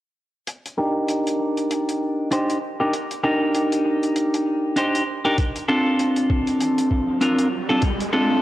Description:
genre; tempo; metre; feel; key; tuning
glitch hop; 98 BPM; 4/4; swing 59% on 16ths; C dorian; A4 = 440 Hz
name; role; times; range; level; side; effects
hi-hat; drums; 0.5-8.1 s; none; -32 LUFS; left 1 dB; cassette tape
clean electric guitar; stabs; 0.8-8.4 s; C4 to C5; -19 LUFS; equal; spring reverb, sidechain pumping, low-pass filter, cassette tape, tape echo
electronic kick drum; drums; 5.4-8.0 s; none; -22 LUFS; equal; cassette tape
riser; sound effects; 6.4-8.4 s; none; -30 LUFS; equal; none
room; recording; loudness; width
moderate lush hall reverb, RT60 1.7 s, small room ambience; home recording on cassette; -19 LUFS; side -14 dB against mid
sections
0.5-8.4 A section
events
filter sweep on clean electric guitar 0.5-8.4; riser 6.4-8.4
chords
0.5 Cm7 (rootless); 5.4 Bbmaj7 (rootless)

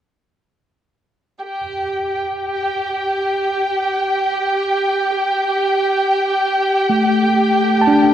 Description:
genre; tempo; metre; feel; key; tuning
ambient; free time; none; none; unclear; A4 = 440 Hz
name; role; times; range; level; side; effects
muted chamber violin section; texture; 1.4-8.1 s; G4 to G5; -16 LUFS; right 1 dB; none
mellow tine electric piano; arpeggios; 6.9-8.1 s; A3 to A5; -14 LUFS; left 1 dB; slow stereo tremolo
room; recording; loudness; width
wet shimmer reverb, RT60 7.8 s; worn, warbling old tape, cassette tape, warbly pitch drift; -16 LUFS; side -10 dB against mid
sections
1.4-8.1 A section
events
none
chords
1.4 A7(no3)

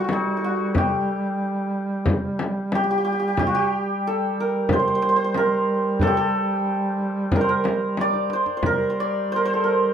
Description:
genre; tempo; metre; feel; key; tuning
Persian modal ensemble; 91 BPM; 4/4; straight; G avaz esfahan; A4 = 440 Hz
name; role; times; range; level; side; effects
santur; melody; 0.0-9.9 s; E4-50c to D5; -22 LUFS; right 1 dB; none
warm duduk; drone; 0.0-9.9 s; G3; -27 LUFS; right 2 dB; none
frame drum; percussion; 0.1-8.8 s; none; -25 LUFS; left 3 dB; none
tombak; percussion; 0.1-9.4 s; none; -28 LUFS; right 2 dB; none
room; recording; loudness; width
moderate studio ambience, RT60 0.5 s; none; -20 LUFS; side -8 dB against mid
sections
0.0-9.9 A section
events
drum fill 8.0-8.6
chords
none

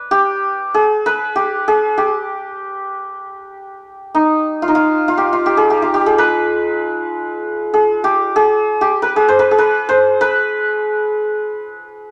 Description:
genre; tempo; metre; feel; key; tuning
persian; 64 BPM (dotted quarters); 6/8; straight; unclear; A4 = 439 Hz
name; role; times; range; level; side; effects
santur; solo; 0.0-12.1 s; Eb4 to D5; -16 LUFS; equal; none
room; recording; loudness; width
wet small room reverb, RT60 0.6 s; none; -16 LUFS; mono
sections
0.0-3.8 A section; 3.8-12.1 B section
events
none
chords
none

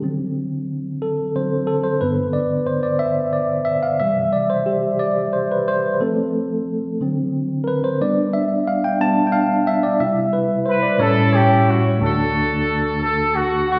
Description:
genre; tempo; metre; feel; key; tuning
gospel; 60 BPM (dotted quarters); 6/8; straight; C major; A4 = 442 Hz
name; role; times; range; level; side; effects
mellow tine electric piano; accompaniment; 0.0-13.8 s; D2 to A5; -20 LUFS; equal; none
mellow horn section; melody; 10.7-13.8 s; C#4 to B4; -21 LUFS; equal; none
room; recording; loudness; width
wet recital hall reverb, RT60 1.6 s; recorded in a church or concert hall; -19 LUFS; mono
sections
0.0-12.0 A section; 12.0-13.8 B section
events
tine electric piano solo 0.0-12.0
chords
0.0 D7; 2.0 G; 4.0 C; 6.0 F; 7.0 D7; 8.0 G; 10.0 C; 11.0 A7; 12.0 D

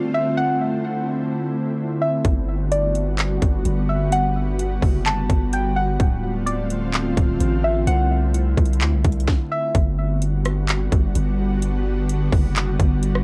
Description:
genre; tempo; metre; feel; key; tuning
hip hop, atmospheric cloud-rap; 128 BPM; 4/4; half-time; G major; A4 = 441 Hz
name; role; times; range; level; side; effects
soft round pluck; melody; 0.0-9.7 s; D5 to A5; -27 LUFS; equal; chorus, analog delay
ethereal airy pad; sustained chords; 0.0-13.2 s; D3 to F#4; -26 LUFS; equal; ensemble chorus, built-in reverb, sidechain pumping, cassette tape
long sustained 808-style bass; bass; 2.2-13.2 s; D1 to D2; -24 LUFS; equal; none
trap drum kit; drums; 2.2-13.2 s; handclaps, hi-hat, kick drum, rim click, snare drum; -23 LUFS; equal; cassette tape
room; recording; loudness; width
little or no reverb; home recording on cassette; -21 LUFS; mono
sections
0.0-9.7 A section; 9.7-13.2 B section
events
stop 9.3-9.7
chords
0.4 C69; 2.2 Gmaj7; 6.0 Dm7; 7.9 C69; 9.7 Gmaj7

